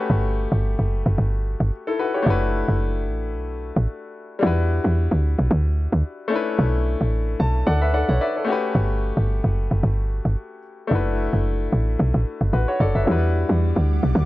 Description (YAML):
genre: amapiano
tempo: 111 BPM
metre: 4/4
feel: swing 55% on 16ths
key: E dorian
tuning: A4 = 442 Hz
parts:
  - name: clear baby grand piano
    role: accompaniment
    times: 0.0-14.3 s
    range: F#3 to A5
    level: -25 LUFS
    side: left 3 dB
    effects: none
  - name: woody log drum bass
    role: bass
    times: 0.1-14.3 s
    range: F#1 to E2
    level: -20 LUFS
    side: equal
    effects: none
  - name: ethereal airy pad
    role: sustained chords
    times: 13.5-14.3 s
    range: G3 to D6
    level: -31 LUFS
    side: right 2 dB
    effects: ensemble chorus, built-in reverb
room: studio ambience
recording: worn, warbling old tape, cassette tape, warbly pitch drift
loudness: -19 LUFS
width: side -17 dB against mid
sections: 0.0-14.3 A section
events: grand piano fill 7.1-8.8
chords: 0.0 Gmaj9#11; 2.3 D69/F#; 4.4 Em9; 6.3 Bm11; 8.5 Gmaj9#11; 10.9 D69/F#; 13.1 Em9